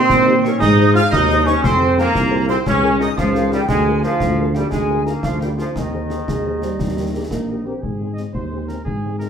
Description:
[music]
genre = military-style march for wind band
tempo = 116 BPM (dotted quarters)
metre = 6/8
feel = straight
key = Ab major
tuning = A4 = 437 Hz
[part]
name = dark trumpet section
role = melody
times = 0.0-9.3 s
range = Eb4 to F5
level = -28 LUFS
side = right 2 dB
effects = none
[part]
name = bright small flute group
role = second line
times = 0.0-7.6 s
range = Eb5 to F6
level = -24 LUFS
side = equal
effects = none
[part]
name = clear trombone section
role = sustained chords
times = 0.0-7.6 s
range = Eb3 to F4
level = -19 LUFS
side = right 1 dB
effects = none
[part]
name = mellow tuba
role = bass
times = 0.1-9.3 s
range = Bb1 to Bb2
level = -19 LUFS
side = right 1 dB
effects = none
[part]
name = concert snare drum, concert bass drum and clash cymbals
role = drums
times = 0.1-9.3 s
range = none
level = -25 LUFS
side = left 2 dB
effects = none
[part]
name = warm French horn section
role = accompaniment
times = 0.3-9.3 s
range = Ab3 to C5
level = -27 LUFS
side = left 3 dB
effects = none
[part]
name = dark euphonium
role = second line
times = 6.3-7.8 s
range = G3 to C4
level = -25 LUFS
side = right 2 dB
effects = none
[sound]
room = wet large studio reverb, RT60 0.9 s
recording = heard from further back in the room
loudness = -15 LUFS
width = side -7 dB against mid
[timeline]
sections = 0.0-7.8 A section; 7.8-9.3 B section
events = none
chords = 0.0 Eb/Bb; 0.6 Ab; 1.6 Fm; 2.7 Bbm7/Db; 3.7 Bb7/D; 5.8 Ab/Eb; 6.8 Eb; 7.8 Ab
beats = 0.09 | 0.60 1.12 | 1.63 2.15 | 2.67 3.18 | 3.70 4.21 | 4.73 5.24 | 5.76 6.28 | 6.79 7.31 | 7.83 8.34 | 8.86

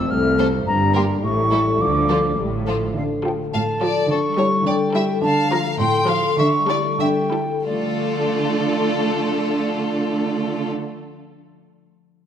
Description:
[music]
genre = cinematic, playful, whimsical film cue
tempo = 89-108 BPM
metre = 2/4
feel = straight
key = D minor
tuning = A4 = 440 Hz
[part]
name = silver concert flute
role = second line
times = 0.0-10.7 s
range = D5 to F6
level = -24 LUFS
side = equal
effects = none
[part]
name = warm French horn section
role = sustained chords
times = 0.0-3.0 s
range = F3 to F4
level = -25 LUFS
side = left 3 dB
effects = none
[part]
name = concert harp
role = arpeggios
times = 0.0-11.6 s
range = F2 to Bb4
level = -24 LUFS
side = left 4 dB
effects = none
[part]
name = rich chamber double bass section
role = bass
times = 0.1-2.9 s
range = G1 to D2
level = -27 LUFS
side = right 3 dB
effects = none
[part]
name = warm symphonic cello section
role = bass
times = 0.1-10.7 s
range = C2 to D3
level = -24 LUFS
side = right 2 dB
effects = none
[part]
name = rich chamber violin section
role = melody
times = 0.4-10.7 s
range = A4 to C5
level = -31 LUFS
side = left 6 dB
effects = none
[part]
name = clear chamber violin section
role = second line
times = 0.4-10.7 s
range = E4 to G5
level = -27 LUFS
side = left 2 dB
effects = none
[part]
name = warm studio viola section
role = accompaniment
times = 0.4-10.7 s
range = F3 to F4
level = -26 LUFS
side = right 3 dB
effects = none
[sound]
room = moderate scoring stage reverb, RT60 1.9 s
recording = none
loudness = -17 LUFS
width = side -9 dB against mid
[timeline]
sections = 0.0-3.0 A section; 3.0-7.7 B section; 7.7-10.3 C section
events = slowing down 4.7-7.7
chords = 0.0 F; 0.7 Gm; 1.2 A7; 1.8 Dm; 4.1 A7/D; 5.2 Dm; 6.4 A7/D; 7.7 Dm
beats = 0.10 | 0.66 1.23 | 1.80 2.38 | 2.96 3.53 | 4.09 4.66 | 5.22 5.79 | 6.37 7.00 | 7.66 8.32 | 8.99 9.66

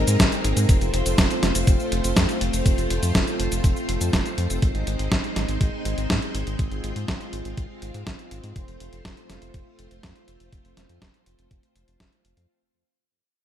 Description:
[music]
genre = italo disco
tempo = 122 BPM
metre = 4/4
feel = straight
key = unclear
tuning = A4 = 440 Hz
[part]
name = string machine, full ensemble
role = sustained chords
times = 0.0-12.5 s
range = Ab3 to C5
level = -28 LUFS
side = equal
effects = ensemble chorus
[part]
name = round analog bass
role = bass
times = 0.0-12.5 s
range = F1 to Ab2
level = -26 LUFS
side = equal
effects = tube saturation
[part]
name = clean 12-bit digital drum machine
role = drums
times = 0.1-12.5 s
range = cabasa, hi-hat, snare drum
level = -25 LUFS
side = equal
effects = none
[part]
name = electronic kick drum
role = drums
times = 0.2-12.1 s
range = none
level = -22 LUFS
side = equal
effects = none
[sound]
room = light reverb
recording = bright 1980s-style digital production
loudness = -20 LUFS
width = side -10 dB against mid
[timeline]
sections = 0.0-12.5 A section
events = fade-out 0.0-12.5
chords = 0.0 Ab; 0.7 F; 4.6 Ab; 8.6 F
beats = 0.20 | 0.69 1.18 1.67 2.17 | 2.66 3.15 3.64 4.13 | 4.62 5.12 5.61 6.10 | 6.59 7.08 7.58 8.07 | 8.56 9.05 9.54 10.03 | 10.53 11.02 11.51 12.00

